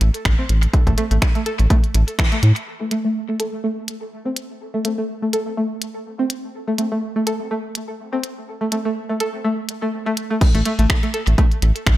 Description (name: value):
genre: minimal techno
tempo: 124 BPM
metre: 4/4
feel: swing 55% on 16ths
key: A minor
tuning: A4 = 440 Hz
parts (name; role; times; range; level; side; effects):
- rubbery square bass; bass; 0.0-2.5, 10.5-12.0 s; A1 to A2; -15 LUFS; equal; sidechain pumping
- minimal click drum kit; drums; 0.0-12.0 s; crash cymbal, finger snaps, hi-hat; -24 LUFS; equal; overdrive, tape echo
- electronic kick drum; drums; 0.3-2.3, 10.4-12.0 s; none; -16 LUFS; equal; none
- string-like resonator pluck; riff; 0.4-11.4 s; E3 to A4; -23 LUFS; equal; chorus, sidechain pumping, dub echo
room: light reverb, digital ambience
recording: echo-heavy mix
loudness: -18 LUFS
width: side -15 dB against mid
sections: 0.0-2.7 A section; 2.7-10.4 B section; 10.4-12.0 C section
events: band accent 2.2; filter sweep on synth pluck 2.7-10.4; drop 10.4-12.0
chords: none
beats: 0.25 | 0.73 1.22 1.70 2.19 | 2.67 3.15 3.64 4.12 | 4.61 5.09 5.57 6.06 | 6.54 7.03 7.51 7.99 | 8.48 8.96 9.45 9.93 | 10.41 10.90 11.38 11.86